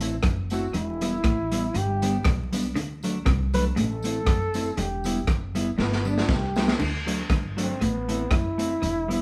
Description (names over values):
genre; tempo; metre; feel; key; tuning
ska; 119 BPM; 4/4; swing 55% on 8ths; unclear; A4 = 440 Hz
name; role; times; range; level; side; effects
mellow electric guitar; accompaniment; 0.0-9.2 s; F#3 to E4; -32 LUFS; equal; none
upright bass; bass; 0.0-9.2 s; E1 to D2; -32 LUFS; equal; none
raw garage drum kit; drums; 0.0-9.2 s; crash cymbal, hi-hat, kick drum, rim click, snare drum; -29 LUFS; equal; dub echo
tambourine; percussion; 0.0-6.7 s; none; -50 LUFS; equal; none
semi-hollow electric guitar; riff; 0.2-9.0 s; E2 to D3; -32 LUFS; equal; dub echo
warm trombone; melody; 0.5-9.2 s; B3 to B4; -32 LUFS; equal; none
room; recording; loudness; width
moderate large studio reverb, RT60 0.9 s; band playing live in one room, vinyl crackle; -25 LUFS; mono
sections
0.0-6.8 A section; 6.8-9.2 A section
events
trombone solo 0.0-6.8, 6.8-9.2; drum fill 5.8-6.8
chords
0.0 Am; 0.7 Em; 1.7 G; 2.8 D; 3.8 Am; 4.8 Em; 5.8 G; 6.8 D; 7.8 Am